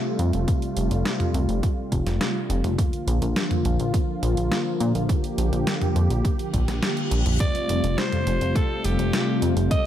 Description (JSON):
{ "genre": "synthwave", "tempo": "104 BPM", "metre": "4/4", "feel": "straight", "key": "Bb major", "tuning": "A4 = 441 Hz", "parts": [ { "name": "warm analog pad", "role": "sustained chords", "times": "0.0-9.9 s", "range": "C3 to G4", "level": "-26 LUFS", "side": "left 1 dB", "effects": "chorus, sidechain pumping" }, { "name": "chorused synth bass", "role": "bass", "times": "0.2-9.7 s", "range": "F1 to Bb2", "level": "-23 LUFS", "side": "equal", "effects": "none" }, { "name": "detuned 8-bit digital drum machine", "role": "drums", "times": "0.2-9.8 s", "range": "hi-hat, snare drum, toms", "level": "-28 LUFS", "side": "equal", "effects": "none" }, { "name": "electronic kick drum", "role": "drums", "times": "0.5-9.8 s", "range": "none", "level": "-23 LUFS", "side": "equal", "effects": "overdrive" }, { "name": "reverse cymbal", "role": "sound effects", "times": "6.5-7.4 s", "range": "none", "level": "-35 LUFS", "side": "left 4 dB", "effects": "none" }, { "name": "raspy alto saxophone", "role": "melody", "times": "7.4-9.9 s", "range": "G4 to Eb5", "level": "-28 LUFS", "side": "right 1 dB", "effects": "analog delay" } ], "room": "moderate plate reverb, RT60 1.8 s, digital ambience", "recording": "dreamy mix soaked in reverb", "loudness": "-21 LUFS", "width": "side -11 dB against mid", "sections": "0.0-9.9 A section", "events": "reverse cymbal 6.5-7.4", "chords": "0.0 Fadd9; 2.8 Bb; 7.4 Fadd9" }